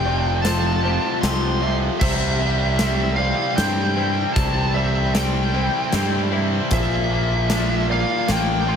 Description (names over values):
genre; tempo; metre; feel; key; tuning
post-rock; 76 BPM; 3/4; straight; unclear; A4 = 440 Hz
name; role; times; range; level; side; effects
smooth overdriven lead guitar; melody; 0.0-8.8 s; E5 to C6; -24 LUFS; left 1 dB; tape echo
sweeping resonant pad; sustained chords; 0.0-8.8 s; C3 to D5; -33 LUFS; right 1 dB; none
felt-muted upright piano; arpeggios; 0.0-8.8 s; C5 to C6; -34 LUFS; right 7 dB; tape echo
twangy electric guitar; arpeggios; 0.0-8.8 s; Bb2 to G4; -33 LUFS; left 2 dB; ensemble chorus, tape echo
cranked stack guitar; riff; 0.0-8.8 s; F2 to C4; -26 LUFS; left 13 dB; overdrive
tight distorted guitar; riff; 0.0-8.8 s; F2 to C4; -27 LUFS; right 13 dB; distortion
growling fingered electric bass; bass; 0.0-8.8 s; F1 to G2; -22 LUFS; right 1 dB; overdrive
huge arena drum kit; drums; 0.4-8.5 s; crash cymbal, hi-hat, kick drum, snare drum; -25 LUFS; equal; none
room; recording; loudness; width
light reverb, studio ambience; none; -18 LUFS; side -7 dB against mid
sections
0.0-8.8 A section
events
none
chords
0.0 Fadd9; 2.0 C; 6.7 Bb